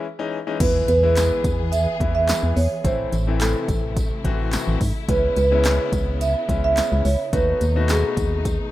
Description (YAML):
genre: dance-pop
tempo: 107 BPM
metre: 4/4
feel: straight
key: E major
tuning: A4 = 440 Hz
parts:
  - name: marimba with soft mallets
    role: melody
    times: 0.0-8.4 s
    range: G#4 to E5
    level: -22 LUFS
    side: right 2 dB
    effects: ping-pong delay
  - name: bright concert grand piano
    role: accompaniment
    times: 0.0-8.4 s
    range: E3 to F#4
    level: -28 LUFS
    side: left 7 dB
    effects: sidechain pumping
  - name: warm studio string section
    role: sustained chords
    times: 0.6-8.7 s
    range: B2 to G#4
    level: -33 LUFS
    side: left 2 dB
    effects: sidechain pumping
  - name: organ-like FM bass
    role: bass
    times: 0.6-8.6 s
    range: A1 to G#2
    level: -22 LUFS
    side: equal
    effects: sidechain pumping
  - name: deep house drum kit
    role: drums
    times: 0.6-8.6 s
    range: crash cymbal, handclaps, hi-hat, kick drum, snare drum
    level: -25 LUFS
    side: equal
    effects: none
  - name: tambourine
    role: percussion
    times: 0.6-8.6 s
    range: none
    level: -38 LUFS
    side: right 4 dB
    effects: none
  - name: impact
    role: sound effects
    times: 0.7-2.8 s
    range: none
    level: -34 LUFS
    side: equal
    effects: none
room: small room ambience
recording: rough home demo mix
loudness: -18 LUFS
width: side -15 dB against mid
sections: 0.6-8.7 A section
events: break 0.0-0.6; impact 0.6-2.8; grand piano fill 8.5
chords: 0.0 C#madd9; 0.6 E; 2.8 Am; 5.1 C#m7; 7.3 B7/D#